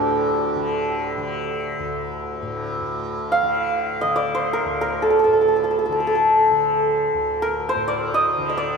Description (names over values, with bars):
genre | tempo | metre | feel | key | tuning
indian classical, Hindustani | free time | none | none | D raga bhairavi | A4 = 436 Hz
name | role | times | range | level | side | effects
santur | melody | 0.0-8.8 s | D4 to F5 | -19 LUFS | right 1 dB | none
tanpura | drone | 0.0-8.8 s | D2 to D3 | -27 LUFS | left 2 dB | none
room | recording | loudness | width
wet church reverb, RT60 3.6 s | recorded in a church or concert hall | -19 LUFS | side -5 dB against mid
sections
0.0-2.8 A section; 2.8-8.8 A section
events
none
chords
none